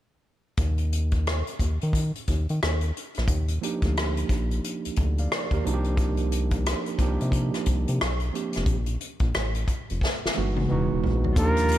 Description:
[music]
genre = R&B, neo-soul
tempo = 89 BPM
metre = 4/4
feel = swing 62% on 16ths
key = unclear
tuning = A4 = 439 Hz
[part]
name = round analog bass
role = bass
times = 0.6-11.8 s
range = E1 to Eb3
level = -25 LUFS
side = equal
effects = none
[part]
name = unplugged drum kit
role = drums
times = 0.6-11.8 s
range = hi-hat, kick drum, rim click, snare drum, toms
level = -27 LUFS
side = equal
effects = none
[part]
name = overdriven tine electric piano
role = accompaniment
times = 3.6-11.8 s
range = E3 to F5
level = -29 LUFS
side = right 4 dB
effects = auto-pan
[part]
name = clear flugelhorn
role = melody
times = 11.4-11.8 s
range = Bb4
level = -23 LUFS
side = equal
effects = slapback echo
[part]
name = clear studio string section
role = sustained chords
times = 11.4-11.8 s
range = D3 to F4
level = -33 LUFS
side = equal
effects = none
[part]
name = maracas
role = percussion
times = 11.4-11.8 s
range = none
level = -42 LUFS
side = left 7 dB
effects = none
[sound]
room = small room ambience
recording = none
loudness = -23 LUFS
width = side -13 dB against mid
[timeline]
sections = 0.6-11.4 A section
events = drum fill 10.0-11.4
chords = 0.6 Ebmaj9; 5.6 Cm11; 8.0 Bb69; 8.7 Bb5; 10.7 Emaj9

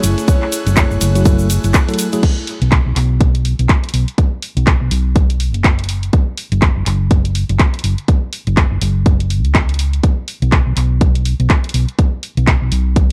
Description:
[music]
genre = deep house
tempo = 123 BPM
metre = 4/4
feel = swing 59% on 16ths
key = unclear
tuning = A4 = 443 Hz
[part]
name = breathy flute-like synth lead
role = melody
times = 0.0-1.7 s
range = C#5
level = -28 LUFS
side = equal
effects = subtle chorus, analog delay
[part]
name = airy breathy pad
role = sustained chords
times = 0.0-2.2 s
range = A3 to G#4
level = -27 LUFS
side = equal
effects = chorus, sidechain pumping
[part]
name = tine electric piano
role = stabs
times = 0.0-2.2 s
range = F#3 to A4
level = -23 LUFS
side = equal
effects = sidechain pumping, analog delay
[part]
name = hollow-body short-scale fingered electric bass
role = bass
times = 0.0-13.1 s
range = F#1 to C#2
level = -18 LUFS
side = equal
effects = sidechain pumping
[part]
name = house drum kit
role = drums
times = 0.0-13.1 s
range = crash cymbal, handclaps, hi-hat, ride cymbal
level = -23 LUFS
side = equal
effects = none
[part]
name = egg shaker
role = percussion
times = 0.0-2.2 s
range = none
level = -29 LUFS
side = equal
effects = none
[part]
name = string machine, violins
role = texture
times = 0.0-2.2 s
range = F#6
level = -37 LUFS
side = equal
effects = ensemble chorus
[part]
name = electronic kick drum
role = drums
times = 0.3-13.1 s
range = none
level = -15 LUFS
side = equal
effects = overdrive
[sound]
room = digital ambience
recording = dry, gritty hardware recording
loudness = -15 LUFS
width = mono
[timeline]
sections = 0.0-2.2 A section; 2.2-13.1 B section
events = drop 0.0-2.2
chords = 0.0 F#m9; 2.2 B5; 6.1 F#5; 10.0 B5

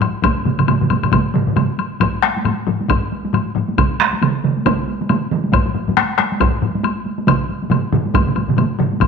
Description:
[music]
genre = japanese traditional, taiko drum ensemble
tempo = 137 BPM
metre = 4/4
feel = swing 60% on 16ths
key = none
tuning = none
[part]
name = taiko ensemble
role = percussion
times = 0.0-9.1 s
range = none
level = -21 LUFS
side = right 1 dB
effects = none
[part]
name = taiko ensemble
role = percussion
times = 0.0-9.1 s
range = none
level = -19 LUFS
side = left 7 dB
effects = none
[part]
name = woodblock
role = percussion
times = 0.0-9.1 s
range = none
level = -23 LUFS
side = left 9 dB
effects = none
[part]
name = taiko ensemble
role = percussion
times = 0.2-8.9 s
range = none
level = -19 LUFS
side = right 8 dB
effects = none
[part]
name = taiko ensemble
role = percussion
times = 0.2-9.1 s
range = none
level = -21 LUFS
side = right 2 dB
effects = none
[sound]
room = wet echo chamber reverb, RT60 1.4 s, small room ambience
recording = 1960s-style stereo with parts hard left and right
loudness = -15 LUFS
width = side -6 dB against mid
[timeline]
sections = 0.0-2.0 A section; 2.0-9.1 B section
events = none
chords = none

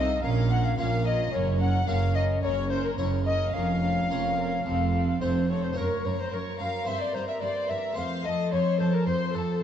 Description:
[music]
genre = classical, baroque-style concerto movement with solo episodes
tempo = 109 BPM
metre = 4/4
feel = straight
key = unclear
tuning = A4 = 439 Hz
[part]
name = alto recorder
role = melody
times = 0.0-9.6 s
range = A4 to Gb5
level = -30 LUFS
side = left 3 dB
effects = none
[part]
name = dark chamber violin section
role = melody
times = 0.0-9.6 s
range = A4 to Db6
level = -40 LUFS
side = left 5 dB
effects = none
[part]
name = rich chamber violin section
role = second line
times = 0.0-9.6 s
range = A4 to Gb5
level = -35 LUFS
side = left 5 dB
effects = none
[part]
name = dark chamber viola section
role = accompaniment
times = 0.0-9.6 s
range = C4 to Db5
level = -35 LUFS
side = right 2 dB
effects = none
[part]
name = harpsichord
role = accompaniment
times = 0.0-9.6 s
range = F2 to C5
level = -32 LUFS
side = equal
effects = none
[part]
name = rich chamber double bass section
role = bass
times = 0.0-5.7 s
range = F1 to C2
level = -30 LUFS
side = right 4 dB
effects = none
[part]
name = warm chamber cello section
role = bass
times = 0.0-9.4 s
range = F2 to C3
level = -30 LUFS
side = right 1 dB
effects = none
[sound]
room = moderate concert hall reverb, RT60 1.9 s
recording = dark, warm production, nothing above 8.0 kHz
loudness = -24 LUFS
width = side -9 dB against mid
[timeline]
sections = 0.0-5.8 A section; 5.8-9.6 A section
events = none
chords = 0.2 Bbm; 1.3 Gb; 2.4 Gb7; 3.5 Bbm/F; 4.7 F; 5.8 Gb; 6.9 C5/G; 8.0 F

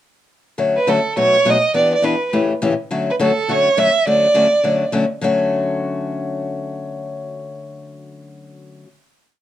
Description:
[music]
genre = jazz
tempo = 207 BPM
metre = 4/4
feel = swing 58% on 8ths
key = D major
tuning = A4 = 440 Hz
[part]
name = picked steel-string acoustic guitar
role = accompaniment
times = 0.6-8.9 s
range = A2 to G4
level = -19 LUFS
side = left 3 dB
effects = none
[part]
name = rich violin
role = melody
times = 0.8-4.9 s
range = A4 to E5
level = -16 LUFS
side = right 3 dB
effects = none
[sound]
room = moderate club reverb, RT60 0.5 s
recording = dark, warm production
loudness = -15 LUFS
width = side -12 dB against mid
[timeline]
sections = 0.6-5.2 A section; 5.2-7.6 final chord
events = none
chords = 0.6 Dmaj7; 1.2 B7; 1.7 Em7; 2.3 A7; 2.9 Dmaj7

